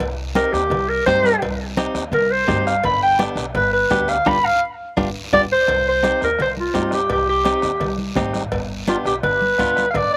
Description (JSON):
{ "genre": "latin, cumbia", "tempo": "169 BPM", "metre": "4/4", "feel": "straight", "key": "C harmonic minor", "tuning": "A4 = 440 Hz", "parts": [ { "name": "upright bass", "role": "bass", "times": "0.0-10.2 s", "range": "G1 to G2", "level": "-30 LUFS", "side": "equal", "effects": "none" }, { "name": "bombo", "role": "percussion", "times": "0.0-10.1 s", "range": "none", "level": "-33 LUFS", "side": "equal", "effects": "slapback echo" }, { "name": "congas", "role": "percussion", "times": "0.0-10.1 s", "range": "none", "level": "-29 LUFS", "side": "equal", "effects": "none" }, { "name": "cowbell and timbales", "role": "percussion", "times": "0.0-10.1 s", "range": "none", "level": "-32 LUFS", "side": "equal", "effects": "slapback echo" }, { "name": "guiro", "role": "percussion", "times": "0.0-10.2 s", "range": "none", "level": "-38 LUFS", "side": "equal", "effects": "none" }, { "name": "warm clarinet", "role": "melody", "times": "0.4-10.2 s", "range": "F4 to B5", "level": "-19 LUFS", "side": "equal", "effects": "slapback echo" }, { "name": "direct-recorded clean electric guitar", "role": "accompaniment", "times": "0.4-9.8 s", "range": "B3 to G4", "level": "-26 LUFS", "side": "equal", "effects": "none" } ], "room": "little or no reverb", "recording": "recorded outdoors, with no room sound, vinyl crackle", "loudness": "-19 LUFS", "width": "mono", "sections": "0.0-5.7 A section; 5.7-10.2 B section", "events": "clarinet solo 0.0-5.7; band accent 4.3-5.7; drum fill 4.6-5.7", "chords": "0.0 Cm; 2.8 G; 5.7 Cm; 8.5 G7" }